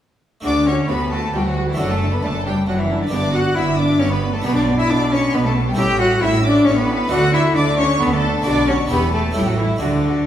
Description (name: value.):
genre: classical, baroque-style concerto movement with solo episodes.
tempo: 135 BPM.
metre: 3/4.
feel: straight.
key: D major.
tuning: A4 = 440 Hz.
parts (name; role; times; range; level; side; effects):
dark cello; melody; 0.4-10.3 s; D3 to G4; -19 LUFS; left 2 dB; none.
rich chamber violin section; second line; 0.4-10.3 s; D4 to G5; -25 LUFS; equal; none.
dark chamber viola section; accompaniment; 0.4-10.1 s; B3 to G4; -27 LUFS; right 1 dB; none.
harpsichord; accompaniment; 0.4-10.3 s; D2 to A4; -30 LUFS; right 1 dB; none.
rich chamber double bass section; bass; 0.4-10.2 s; E1 to D2; -23 LUFS; right 3 dB; none.
warm chamber cello section; bass; 0.4-10.2 s; D2 to D3; -25 LUFS; right 2 dB; none.
warm chamber violin section; melody; 0.5-10.3 s; D5 to G6; -26 LUFS; left 1 dB; none.
room: wet recital hall reverb, RT60 1.6 s.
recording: heard from further back in the room.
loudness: -15 LUFS.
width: side -10 dB against mid.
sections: 0.4-10.3 A section.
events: none.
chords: 0.4 D; 1.8 D/F#; 3.1 G; 4.5 G/B; 5.8 A; 7.1 D; 8.5 Bm; 8.9 Em; 9.4 A.